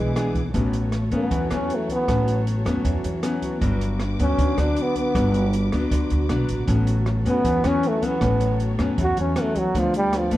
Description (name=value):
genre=bossa nova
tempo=156 BPM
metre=4/4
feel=straight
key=A mixolydian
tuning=A4 = 441 Hz
part: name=warm trombone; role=melody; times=0.0-10.4 s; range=F3 to F#4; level=-23 LUFS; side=right 1 dB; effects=none
part: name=nylon-string guitar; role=accompaniment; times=0.0-10.4 s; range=G2 to G#4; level=-25 LUFS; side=left 2 dB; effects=none
part: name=warm symphonic string section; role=sustained chords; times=0.0-10.4 s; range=B3 to D6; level=-34 LUFS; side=right 1 dB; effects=none
part: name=upright bass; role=bass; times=0.0-10.4 s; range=G1 to E2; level=-24 LUFS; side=equal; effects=none
part: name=open jazz drum kit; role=drums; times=0.2-10.4 s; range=hi-hat, kick drum, rim click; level=-30 LUFS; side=right 1 dB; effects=none
room=light reverb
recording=worn, warbling old tape, cassette tape, warbly pitch drift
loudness=-20 LUFS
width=side -15 dB against mid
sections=0.5-10.4 A section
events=trombone solo 0.5-10.4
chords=0.0 E7; 0.5 A69; 3.6 Gmaj7; 6.7 A69; 9.7 Dm6